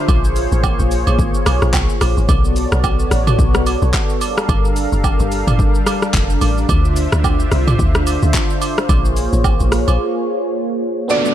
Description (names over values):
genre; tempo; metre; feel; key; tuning
amapiano; 109 BPM; 4/4; swing 58% on 16ths; unclear; A4 = 440 Hz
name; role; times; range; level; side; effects
warm analog pad; sustained chords; 0.0-11.3 s; D3 to F5; -20 LUFS; equal; chorus, sidechain pumping
deep log drum bass; bass; 0.1-10.0 s; F1 to D2; -17 LUFS; equal; none
deep house drum kit; drums; 0.1-11.3 s; handclaps, hi-hat, kick drum, rim click, shaker, toms; -17 LUFS; equal; none
agogo bells and woodblock; percussion; 0.1-10.0 s; none; -25 LUFS; right 8 dB; none
mallet-like synth pluck; melody; 11.1-11.3 s; D5; -16 LUFS; right 2 dB; chorus
barking FM electric piano; accompaniment; 11.1-11.3 s; B3 to D5; -18 LUFS; right 2 dB; chorus, tremolo
downlifter; sound effects; 11.1-11.3 s; none; -19 LUFS; right 1 dB; none
room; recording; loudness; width
little or no reverb; none; -13 LUFS; side -11 dB against mid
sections
0.0-11.1 A section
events
drop 0.0-11.1; break 10.0-11.1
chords
0.1 A#m7; 2.3 Bm7; 4.2 Gm7; 6.7 Dm7; 8.9 A#m7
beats
| 0.09 0.64 1.19 1.74 | 2.29 2.84 3.39 3.94 | 4.49 5.04 5.59 6.14 | 6.69 7.24 7.79 8.34 | 8.89 9.44 9.99 10.54 | 11.10